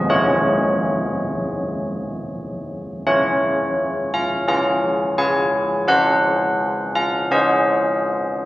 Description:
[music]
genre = classical, tune for church bells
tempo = 81-86 BPM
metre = 4/4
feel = straight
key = Db major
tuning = A4 = 439 Hz
[part]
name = old church bells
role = solo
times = 0.0-8.5 s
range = Db4 to Ab5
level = -17 LUFS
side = equal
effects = none
[sound]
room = wet recital hall reverb, RT60 1.6 s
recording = none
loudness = -17 LUFS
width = side -17 dB against mid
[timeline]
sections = 0.0-3.0 A section; 3.0-8.5 B section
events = none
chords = 0.1 Db; 5.9 Ab7/Db

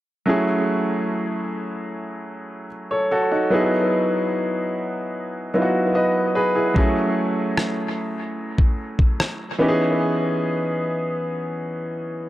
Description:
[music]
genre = contemporary R&B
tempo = 74 BPM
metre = 4/4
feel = straight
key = F# dorian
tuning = A4 = 441 Hz
[part]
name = clear baby grand piano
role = accompaniment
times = 0.3-12.3 s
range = E3 to D#5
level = -20 LUFS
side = equal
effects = dub echo
[part]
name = dusty soul sampler-style drum kit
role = drums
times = 6.8-9.4 s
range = kick drum, rim click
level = -21 LUFS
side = equal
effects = dub echo
[sound]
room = wet spring reverb, RT60 2.5 s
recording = echo-heavy mix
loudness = -19 LUFS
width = side -15 dB against mid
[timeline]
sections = 0.3-12.3 A section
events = break 10.0-12.3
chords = 0.3 F#m9; 3.5 Emaj7; 6.8 F#m9; 9.6 C#m7

